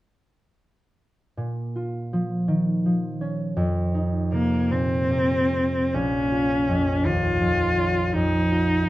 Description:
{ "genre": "classical, romantic duo for cello and harp", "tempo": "54 BPM (dotted quarters)", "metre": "12/8", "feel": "rubato", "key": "Bb minor", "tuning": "A4 = 445 Hz", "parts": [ { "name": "concert harp", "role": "accompaniment", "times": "1.4-8.9 s", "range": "Bb1 to F4", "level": "-23 LUFS", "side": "right 1 dB", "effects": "none" }, { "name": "rich cello", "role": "melody", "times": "4.3-8.9 s", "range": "Bb3 to F4", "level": "-22 LUFS", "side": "left 1 dB", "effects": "none" } ], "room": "light reverb", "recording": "dark, warm production", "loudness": "-21 LUFS", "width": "side -16 dB against mid", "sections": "1.4-5.9 A section; 5.9-8.9 B section", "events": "none", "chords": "1.4 Bbm; 3.6 F5; 5.9 Bbm" }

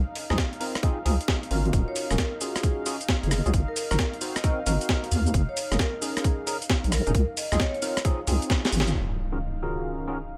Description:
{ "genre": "UK garage, two-step garage", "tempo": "133 BPM", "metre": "4/4", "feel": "swing 66% on 16ths", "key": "Eb dorian", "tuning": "A4 = 439 Hz", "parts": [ { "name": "warm analog pad", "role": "sustained chords", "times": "0.0-10.4 s", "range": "Eb4 to F5", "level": "-41 LUFS", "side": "equal", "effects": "chorus, sidechain pumping" }, { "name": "deep soft wobble bass", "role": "bass", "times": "0.0-8.9 s", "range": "Eb1 to Eb2", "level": "-26 LUFS", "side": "equal", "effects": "chorus" }, { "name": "breakbeat sampler-style drum kit", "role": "drums", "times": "0.2-8.9 s", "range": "hi-hat, rim click, shaker, snare drum", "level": "-31 LUFS", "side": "equal", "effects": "low-pass filter on hats, low-pass filter on cymbals, low-pass filter on snare, low-pass filter on perc" }, { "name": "overdriven tine electric piano", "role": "stabs", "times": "0.3-10.2 s", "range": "Eb3 to C5", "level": "-35 LUFS", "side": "equal", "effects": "analog chorus, low-pass filter, delay" }, { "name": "electronic kick drum", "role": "drums", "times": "0.4-8.6 s", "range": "none", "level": "-28 LUFS", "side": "equal", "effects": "none" }, { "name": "vibraphone with medium mallets", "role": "melody", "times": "1.9-7.9 s", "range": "Ab4 to Eb5", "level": "-36 LUFS", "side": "equal", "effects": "delay" }, { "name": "impact", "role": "sound effects", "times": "8.9-10.4 s", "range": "none", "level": "-33 LUFS", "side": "equal", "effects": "none" } ], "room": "light reverb, digital ambience", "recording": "none", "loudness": "-26 LUFS", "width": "mono", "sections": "0.0-8.9 A section; 8.9-10.4 B section", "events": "drum fill 8.5-8.9; band accent 8.8; impact 8.9-10.4; filter sweep on tine electric piano 8.9-10.4", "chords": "0.0 Dbmaj9; 1.7 Ebm11; 3.5 Ab9; 5.3 Gb69 (rootless); 7.1 Dbmaj9; 8.9 Ebm11" }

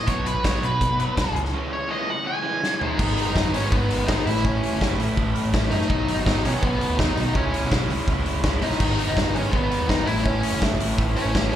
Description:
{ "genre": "indie rock", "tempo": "165 BPM", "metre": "4/4", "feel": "straight", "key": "unclear", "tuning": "A4 = 439 Hz", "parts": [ { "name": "octave-fuzz lead guitar", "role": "melody", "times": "0.0-11.6 s", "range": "B3 to G#5", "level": "-26 LUFS", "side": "equal", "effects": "distortion, slapback echo" }, { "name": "raw garage guitar", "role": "riff", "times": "0.0-11.6 s", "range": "G#2 to G#4", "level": "-29 LUFS", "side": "left 4 dB", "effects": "overdrive, slapback echo" }, { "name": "raw garage guitar", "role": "riff", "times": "0.1-11.6 s", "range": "G#2 to E4", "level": "-29 LUFS", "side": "right 6 dB", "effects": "overdrive, analog chorus, slapback echo" }, { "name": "overdriven picked electric bass", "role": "bass", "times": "0.1-11.6 s", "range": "F#1 to B2", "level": "-26 LUFS", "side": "equal", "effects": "none" }, { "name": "loose indie drum kit", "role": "drums", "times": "0.1-11.6 s", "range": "crash cymbal, hi-hat, kick drum, snare drum, toms", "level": "-25 LUFS", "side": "equal", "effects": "none" } ], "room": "little or no reverb", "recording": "live gig heard through the venue's PA, club reverb", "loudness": "-20 LUFS", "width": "side -11 dB against mid", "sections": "0.0-3.0 A section; 3.0-11.6 B section", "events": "lead electric guitar solo 0.0-3.0; break 1.5-3.0; drum fill 2.6-3.0", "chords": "0.1 Bmaj7; 1.4 C#m; 3.0 G#m; 4.3 A; 5.9 B; 7.3 C#m; 8.8 G#m; 10.1 A" }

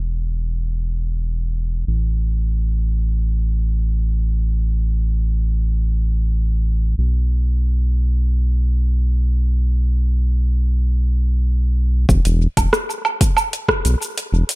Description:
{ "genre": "sunset chillout", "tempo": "free time", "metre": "none", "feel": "none", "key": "unclear", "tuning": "A4 = 439 Hz", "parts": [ { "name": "round analog bass", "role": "bass", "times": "0.0-14.4 s", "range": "E1 to B1", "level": "-17 LUFS", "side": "equal", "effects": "none" }, { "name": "deep house drum kit", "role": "drums", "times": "12.1-14.6 s", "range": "hi-hat, rim click, shaker, woodblock", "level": "-19 LUFS", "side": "right 2 dB", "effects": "studio ambience, tape echo" }, { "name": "electronic kick drum", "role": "drums", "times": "12.1-13.8 s", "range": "none", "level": "-17 LUFS", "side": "equal", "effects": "studio ambience" } ], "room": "little or no reverb", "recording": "echo-heavy mix, low-pass filter", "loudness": "-17 LUFS", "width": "side -21 dB against mid", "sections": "0.0-12.1 A section; 12.1-14.6 B section", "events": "filter sweep 0.0-12.1", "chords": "none" }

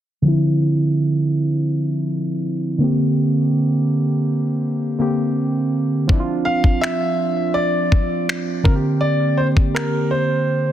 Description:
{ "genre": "contemporary R&B", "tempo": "82 BPM", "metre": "4/4", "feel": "straight", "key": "D minor", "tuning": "A4 = 439 Hz", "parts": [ { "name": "muted felt-like synth keys", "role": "accompaniment", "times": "0.2-10.7 s", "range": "D3 to G4", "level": "-18 LUFS", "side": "right 1 dB", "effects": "chorus" }, { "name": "dusty soul sampler-style drum kit", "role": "drums", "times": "6.1-9.9 s", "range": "finger snaps, kick drum", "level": "-17 LUFS", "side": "left 1 dB", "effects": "soft clipping on snare" }, { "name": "warm concert grand piano", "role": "melody", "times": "6.5-10.7 s", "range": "Bb4 to F5", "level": "-21 LUFS", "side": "left 1 dB", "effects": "ping-pong delay" } ], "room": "moderate plate reverb, RT60 2.7 s", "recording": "dense, heavily limited modern master, low-pass filter", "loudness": "-16 LUFS", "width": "side -11 dB against mid", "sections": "0.2-6.1 A section; 6.1-10.7 B section", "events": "filter sweep 0.2-6.1", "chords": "0.2 Dm9; 2.8 Bb69/D; 6.1 Dm9; 8.7 Bb69/D" }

